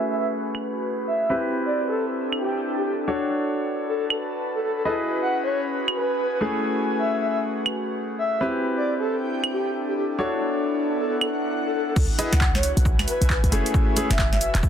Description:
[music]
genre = UK garage, two-step garage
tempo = 135 BPM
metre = 4/4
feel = swing 62% on 16ths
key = C# phrygian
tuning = A4 = 443 Hz
[part]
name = breathy flute-like synth lead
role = melody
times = 0.0-14.5 s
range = G4 to F#5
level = -27 LUFS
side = equal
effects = chorus, ping-pong delay
[part]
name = dark grand piano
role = stabs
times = 0.0-14.1 s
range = A3 to D#5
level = -27 LUFS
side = equal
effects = ping-pong delay
[part]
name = airy breathy pad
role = texture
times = 0.0-14.7 s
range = B3 to A5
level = -28 LUFS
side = left 1 dB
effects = chorus, sidechain pumping
[part]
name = punchy analog drum machine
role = drums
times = 0.5-14.7 s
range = cabasa, claves, crash cymbal, handclaps, hi-hat, snare drum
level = -26 LUFS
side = right 2 dB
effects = none
[part]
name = short 808-style bass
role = bass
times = 12.0-14.6 s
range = E1 to C#2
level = -22 LUFS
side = equal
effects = none
[part]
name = electronic kick drum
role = drums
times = 12.0-14.7 s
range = none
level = -22 LUFS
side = equal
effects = none
[sound]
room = moderate plate reverb, RT60 1.5 s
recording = dense, heavily limited modern master, low-pass filter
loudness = -21 LUFS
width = side -8 dB against mid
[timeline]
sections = 0.0-12.0 A section; 12.0-14.7 B section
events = filter sweep 0.0-12.0; drop 12.0-14.7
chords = 0.0 F#m9; 1.3 Am9; 3.1 Bm9; 4.9 C#m9; 6.4 F#m9; 8.4 Am9; 10.2 Bm9; 12.0 C#m7; 13.5 F#m9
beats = 0.41 0.85 | 1.30 1.74 2.19 2.63 | 3.08 3.52 3.96 4.41 | 4.85 5.30 5.74 6.19 | 6.63 7.08 7.52 7.96 | 8.41 8.85 9.30 9.74 | 10.19 10.63 11.07 11.52 | 11.96 12.41 12.85 13.30 | 13.74 14.19 14.63

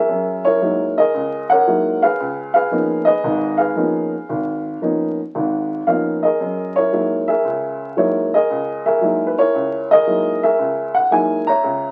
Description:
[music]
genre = solo jazz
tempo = 114 BPM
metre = 4/4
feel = swing 68% on 8ths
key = unclear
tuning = A4 = 440 Hz
[part]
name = dark upright piano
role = solo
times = 0.0-11.9 s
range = Ab1 to Bb5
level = -18 LUFS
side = equal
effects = none
[sound]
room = moderate studio reverb, RT60 0.5 s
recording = very old 78 rpm record, vinyl crackle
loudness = -18 LUFS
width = mono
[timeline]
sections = 0.0-11.9 A section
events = none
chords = 0.1 Gb13; 2.2 Db13; 6.4 Gb13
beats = | 0.09 0.61 1.14 1.67 | 2.19 2.71 3.24 3.76 | 4.29 4.81 5.34 5.86 | 6.39 6.91 7.44 7.96 | 8.49 9.01 9.54 10.06 | 10.58 11.11 11.63

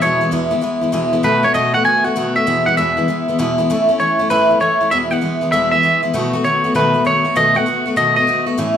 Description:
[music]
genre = rock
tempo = 196 BPM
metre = 4/4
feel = swing 65% on 8ths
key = E major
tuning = A4 = 440 Hz
[part]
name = twangy electric guitar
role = melody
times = 0.0-8.5 s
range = B4 to G#5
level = -15 LUFS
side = equal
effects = none
[part]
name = picked steel-string acoustic guitar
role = accompaniment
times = 0.0-8.8 s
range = E2 to F#4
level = -16 LUFS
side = equal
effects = none
[sound]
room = moderate large studio reverb, RT60 1.1 s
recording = band playing live in one room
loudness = -13 LUFS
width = side -9 dB against mid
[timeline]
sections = 0.0-3.7 A section; 3.7-8.8 B section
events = none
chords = 0.0 E; 1.2 B7; 2.5 E; 3.7 A; 4.9 E; 6.1 B7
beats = | 0.01 0.32 0.63 0.93 | 1.24 1.55 1.86 2.16 | 2.47 2.78 3.08 3.39 | 3.69 4.00 4.31 4.61 | 4.92 5.22 5.53 5.83 | 6.14 6.44 6.75 7.05 | 7.36 7.66 7.97 8.28 | 8.58

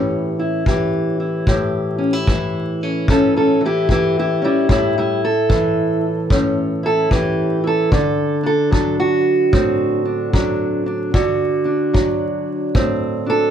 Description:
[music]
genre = acoustic country blues, solo or duo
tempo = 74 BPM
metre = 4/4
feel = swing 64% on 8ths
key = A mixolydian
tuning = A4 = 439 Hz
[part]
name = fingerpicked steel-string acoustic guitar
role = melody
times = 0.0-13.5 s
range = A2 to A4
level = -16 LUFS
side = equal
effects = plate reverb
[part]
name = kick drum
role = drums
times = 0.7-13.0 s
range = none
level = -19 LUFS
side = equal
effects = none
[sound]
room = moderate studio reverb, RT60 0.6 s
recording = dark, warm production, vinyl crackle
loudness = -15 LUFS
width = side -9 dB against mid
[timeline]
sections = 0.0-13.5 A section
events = none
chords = 0.0 A7; 7.9 D7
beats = 0.66 | 1.47 2.28 3.08 3.89 | 4.69 5.50 6.31 7.11 | 7.92 8.72 9.53 10.34 | 11.14 11.95 12.75

